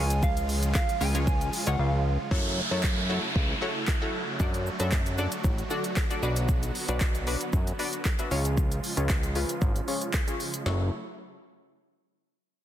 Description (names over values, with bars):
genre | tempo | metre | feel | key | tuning
dance-pop | 115 BPM | 4/4 | straight | F# minor | A4 = 438 Hz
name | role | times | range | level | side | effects
soft struck synth lead | melody | 0.0-2.2 s | E#5 to G#5 | -34 LUFS | right 2 dB | chorus, dub echo
analog pluck | accompaniment | 0.0-10.9 s | G#3 to E5 | -34 LUFS | left 2 dB | chorus, sidechain pumping, low-pass filter
supersaw chords | sustained chords | 0.0-10.9 s | C#3 to F#4 | -36 LUFS | right 2 dB | sidechain pumping, low-pass filter
fat analog bass | bass | 0.0-10.9 s | F#1 to F#2 | -28 LUFS | equal | sidechain pumping
deep house drum kit | drums | 0.1-10.8 s | handclaps, hi-hat, kick drum, shaker, snare drum | -28 LUFS | equal | none
downlifter | sound effects | 2.3-6.5 s | none | -34 LUFS | right 1 dB | none
room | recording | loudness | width
light reverb | dense, heavily limited modern master | -25 LUFS | side -11 dB against mid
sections
0.0-2.3 A section; 2.3-10.7 B section; 10.7-12.6 C section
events
silent gap 1.8-2.3; filter sweep 2.3-10.7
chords
0.0 C#; 2.3 F#m7; 4.4 D/F#; 6.2 Bm; 8.3 C#; 10.7 F#m7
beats
| 0.23 0.75 1.27 1.79 | 2.31 2.83 3.36 3.88 | 4.40 4.92 5.44 5.97 | 6.49 7.01 7.53 8.05 | 8.57 9.10 9.62 10.14 | 10.66